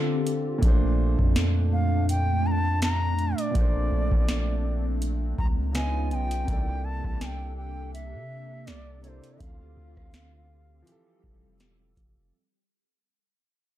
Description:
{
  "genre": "contemporary R&B",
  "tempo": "82 BPM",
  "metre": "4/4",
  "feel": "swing 54% on 16ths",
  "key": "unclear",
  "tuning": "A4 = 440 Hz",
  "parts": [
    { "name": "warm concert grand piano", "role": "accompaniment", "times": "0.0-12.4 s", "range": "Bb2 to F5", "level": "-33 LUFS", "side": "right 1 dB", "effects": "none" },
    { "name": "hollow soft pad", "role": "sustained chords", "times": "0.0-12.3 s", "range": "Bb2 to A4", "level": "-33 LUFS", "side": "equal", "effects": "ensemble chorus" },
    { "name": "booming analog drum machine", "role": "drums", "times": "0.3-12.2 s", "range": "hi-hat, kick drum, rim click, snare drum", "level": "-26 LUFS", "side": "equal", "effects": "none" },
    { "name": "long sustained 808-style bass", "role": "bass", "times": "0.6-12.3 s", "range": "E1 to C3", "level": "-27 LUFS", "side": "equal", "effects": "none" },
    { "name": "bright reedy bansuri", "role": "melody", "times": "1.7-11.6 s", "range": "C5 to Bb5", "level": "-33 LUFS", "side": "equal", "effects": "none" }
  ],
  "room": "digital ambience",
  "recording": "dark, warm production",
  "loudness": "-23 LUFS",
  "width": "side -13 dB against mid",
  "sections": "0.0-12.3 A section",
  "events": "break 0.0-0.6; fade-out 0.0-12.3",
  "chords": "0.0 Dm9; 0.6 Bbmaj9; 5.7 Db9; 6.5 C13; 9.4 Dm7; 10.9 Fmaj9",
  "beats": "| 0.62 1.36 2.09 2.82 | 3.55 4.28 5.02 5.75 | 6.48 7.21 7.94 8.67 | 9.41 10.14 10.87 11.60"
}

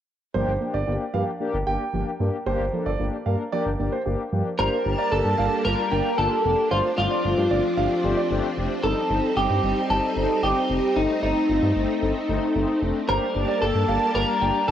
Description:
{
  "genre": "synth-pop",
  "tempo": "113 BPM",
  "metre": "4/4",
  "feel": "straight",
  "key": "G minor",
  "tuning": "A4 = 440 Hz",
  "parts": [
    { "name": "clear grand piano", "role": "second line", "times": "0.3-8.3, 13.1-14.7 s", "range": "C5 to G5", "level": "-30 LUFS", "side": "right 6 dB", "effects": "cassette tape, tape echo" },
    { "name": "mellow synth brass", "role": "accompaniment", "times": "0.3-14.7 s", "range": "G3 to Bb4", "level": "-28 LUFS", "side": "left 5 dB", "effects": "chorus, cassette tape" },
    { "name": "soft round pluck", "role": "arpeggios", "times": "0.3-4.5 s", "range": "F3 to G4", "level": "-34 LUFS", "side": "right 6 dB", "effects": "chorus, cassette tape, tape echo" },
    { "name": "smooth synth bass", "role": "bass", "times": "0.3-14.7 s", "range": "F1 to G2", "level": "-26 LUFS", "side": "equal", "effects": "none" },
    { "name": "twelve-string electric guitar", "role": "melody", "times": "4.6-14.7 s", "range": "Eb4 to Bb4", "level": "-23 LUFS", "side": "equal", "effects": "lush chorus" },
    { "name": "string machine, violins", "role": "sustained chords", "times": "4.6-14.7 s", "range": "F3 to A5", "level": "-28 LUFS", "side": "equal", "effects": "ensemble chorus, cassette tape" }
  ],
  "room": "moderate spring reverb, RT60 2.0 s",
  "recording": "home recording on cassette",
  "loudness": "-21 LUFS",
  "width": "side -10 dB against mid",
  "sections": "0.3-4.6 A section; 4.6-14.7 B section",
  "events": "none",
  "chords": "0.3 Gm7; 4.6 Gmadd9; 6.7 Dm7/G; 8.8 Cm/G; 11.0 Adim/G; 13.1 Gmadd9",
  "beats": "| 0.34 0.87 1.40 1.93 | 2.46 3.00 3.53 4.06 | 4.59 5.12 5.65 6.18 | 6.71 7.24 7.77 8.30 | 8.84 9.37 9.90 10.43 | 10.96 11.49 12.02 12.55 | 13.08 13.62 14.15 14.68"
}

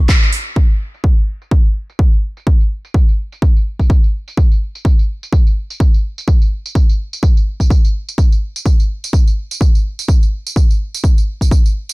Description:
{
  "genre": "house",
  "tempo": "126 BPM",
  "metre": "4/4",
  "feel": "swing 57% on 16ths",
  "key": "none",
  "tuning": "none",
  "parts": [
    { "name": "electronic kick drum", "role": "drums", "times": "0.1-11.6 s", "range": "none", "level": "-11 LUFS", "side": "equal", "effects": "none" },
    { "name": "house drum kit", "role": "drums", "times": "0.1-11.9 s", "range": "crash cymbal, handclaps, hi-hat, tambourine", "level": "-24 LUFS", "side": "right 2 dB", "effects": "sidechain pumping on hats, low-pass filter on hats, sidechain pumping on perc, low-pass filter on perc, low-pass filter on snare, sidechain pumping on cymbals, low-pass filter on cymbals" }
  ],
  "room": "digital ambience",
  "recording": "none",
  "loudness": "-12 LUFS",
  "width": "side -25 dB against mid",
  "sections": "0.6-11.9 A section",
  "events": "band accent 0.1; filter sweep 0.6-11.9",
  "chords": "none",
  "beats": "0.09 | 0.56 1.04 1.52 1.99 | 2.47 2.94 3.42 3.90 | 4.37 4.85 5.33 5.80 | 6.28 6.75 7.23 7.71 | 8.18 8.66 9.13 9.61 | 10.09 10.56 11.04 11.52"
}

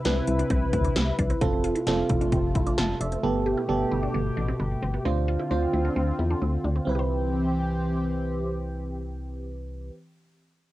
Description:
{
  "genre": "synth-pop",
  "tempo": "132 BPM",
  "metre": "4/4",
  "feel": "straight",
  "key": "C major",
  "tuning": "A4 = 439 Hz",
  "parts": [
    { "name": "chorused pulse-width pad", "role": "sustained chords", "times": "0.0-9.9 s", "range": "B2 to B4", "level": "-29 LUFS", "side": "equal", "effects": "cassette tape" },
    { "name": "FM electric piano", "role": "accompaniment", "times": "0.1-9.9 s", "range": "B3 to A5", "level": "-30 LUFS", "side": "right 4 dB", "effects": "chorus, cassette tape" },
    { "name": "resonant blip pluck", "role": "arpeggios", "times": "0.1-10.0 s", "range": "B3 to C5", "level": "-35 LUFS", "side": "equal", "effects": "phaser, cassette tape, analog delay" },
    { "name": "solid FM bass", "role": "bass", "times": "0.1-9.9 s", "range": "F1 to E2", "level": "-28 LUFS", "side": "left 1 dB", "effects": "none" },
    { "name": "80s electronic pad drums", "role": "drums", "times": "0.1-3.2 s", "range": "hi-hat, kick drum, snare drum", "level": "-26 LUFS", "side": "left 1 dB", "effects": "none" }
  ],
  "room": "wet booth ambience, RT60 0.2 s",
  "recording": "home recording on cassette",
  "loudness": "-23 LUFS",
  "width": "side -16 dB against mid",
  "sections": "0.0-6.9 A section; 6.9-10.5 B section",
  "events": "FM electric piano fill 2.6-3.2",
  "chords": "0.0 Cmaj7; 1.4 F; 3.2 Gadd9; 5.1 Dm7; 6.9 Cmaj7",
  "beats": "0.05 0.51 0.96 | 1.42 1.87 2.32 2.78 | 3.23 3.69 4.14 4.60 | 5.05 5.51 5.96 6.42 | 6.87 7.32 7.78 8.23 | 8.69 9.14 9.60"
}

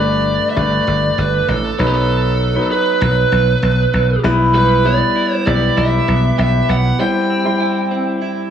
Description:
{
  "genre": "pop",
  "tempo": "98 BPM",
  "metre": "4/4",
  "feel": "straight",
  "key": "unclear",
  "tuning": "A4 = 442 Hz",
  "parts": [
    { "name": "lead guitar through a small cranked amp", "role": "melody", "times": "0.0-8.5 s", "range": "G4 to G5", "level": "-18 LUFS", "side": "right 3 dB", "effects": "overdrive" },
    { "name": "clear concert grand piano", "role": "accompaniment", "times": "0.0-8.5 s", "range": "F#3 to C5", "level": "-18 LUFS", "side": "left 3 dB", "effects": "none" },
    { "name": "direct-recorded clean electric guitar", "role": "riff", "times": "0.0-0.2, 4.5-8.5 s", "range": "G3 to A4", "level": "-23 LUFS", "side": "right 6 dB", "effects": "analog chorus" },
    { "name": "dry thumbed slap bass", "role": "bass", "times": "0.0-6.9 s", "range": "G1 to B1", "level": "-16 LUFS", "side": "equal", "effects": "none" }
  ],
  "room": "light reverb",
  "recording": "studio reverb",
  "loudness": "-13 LUFS",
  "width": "side -8 dB against mid",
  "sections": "0.0-8.5 A section",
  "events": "break 7.0-8.5",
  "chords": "0.0 Gadd9; 1.8 B; 4.2 Em/B; 7.0 C",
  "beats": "0.26 0.87 1.48 | 2.10 2.71 3.32 3.93 | 4.54 5.16 5.77 6.38 | 6.99 7.61 8.22"
}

